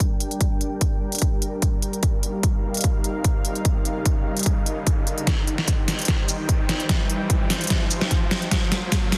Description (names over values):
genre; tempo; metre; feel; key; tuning
heavy wobble dubstep; 148 BPM; 4/4; swing 53% on 16ths, half-time; unclear; A4 = 440 Hz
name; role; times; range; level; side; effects
supersaw pad; sustained chords; 0.0-9.2 s; G3 to G5; -32 LUFS; equal; sidechain pumping, low-pass filter
dubstep drum kit; drums; 0.0-9.2 s; hi-hat, shaker, snare drum; -27 LUFS; equal; none
electronic kick drum; drums; 0.0-9.0 s; none; -24 LUFS; equal; none
riser; sound effects; 0.8-9.2 s; none; -36 LUFS; equal; none
room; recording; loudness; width
light reverb; dense, heavily limited modern master; -23 LUFS; mono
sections
0.0-9.2 A section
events
build-up 0.0-9.2; filter sweep on supersaw synth 0.0-9.2; riser 0.8-9.2; drum fill 5.3-9.2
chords
0.0 Gm; 2.0 Ebadd9; 5.3 Cm; 8.5 Fsus4